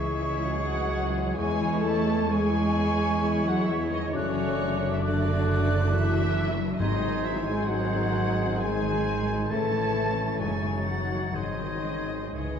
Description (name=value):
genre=classical, slow romantic movement for symphony orchestra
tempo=66 BPM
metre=3/4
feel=rubato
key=C# minor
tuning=A4 = 441 Hz
part: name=muted studio violin section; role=melody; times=0.0-12.6 s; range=C#5 to A5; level=-34 LUFS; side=left 1 dB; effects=none
part: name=bright small flute group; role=second line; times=0.0-12.6 s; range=C#6 to A6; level=-36 LUFS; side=equal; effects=none
part: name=clear clarinet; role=second line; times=0.0-12.6 s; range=D#4 to G#4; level=-38 LUFS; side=left 1 dB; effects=none
part: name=muted studio violin section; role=second line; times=0.0-12.6 s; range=G#3 to D4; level=-38 LUFS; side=left 2 dB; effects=none
part: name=warm oboe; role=second line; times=0.0-12.6 s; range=B#4 to D5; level=-38 LUFS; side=right 2 dB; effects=none
part: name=mellow bassoon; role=accompaniment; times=0.0-12.6 s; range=E3 to A3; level=-37 LUFS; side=right 2 dB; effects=none
part: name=muted studio viola section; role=accompaniment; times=0.0-12.6 s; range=C#3 to G#3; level=-38 LUFS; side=right 2 dB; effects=none
part: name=warm French horn section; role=sustained chords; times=0.0-12.6 s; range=C#4 to A4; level=-32 LUFS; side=left 6 dB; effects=none
part: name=concert harp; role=arpeggios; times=0.0-12.6 s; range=E2 to C#5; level=-35 LUFS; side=left 8 dB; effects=none
part: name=muted studio cello section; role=bass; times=0.0-12.6 s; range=C#3 to A3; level=-31 LUFS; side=right 3 dB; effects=none
part: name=muted studio double bass section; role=bass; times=0.0-12.6 s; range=F#1 to E2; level=-30 LUFS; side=right 3 dB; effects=none
part: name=timpani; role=percussion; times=6.8-8.1, 12.4-12.6 s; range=G#2 to C#3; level=-34 LUFS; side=equal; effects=none
room=wet recital hall reverb, RT60 1.4 s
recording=dark, warm production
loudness=-24 LUFS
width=side -7 dB against mid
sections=0.0-12.6 A section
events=timpani fill 12.3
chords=0.0 C#m; 1.4 C#m/E; 4.1 D/F#; 6.8 G#7; 9.5 A; 10.4 D#m7b5/F#; 11.3 G#7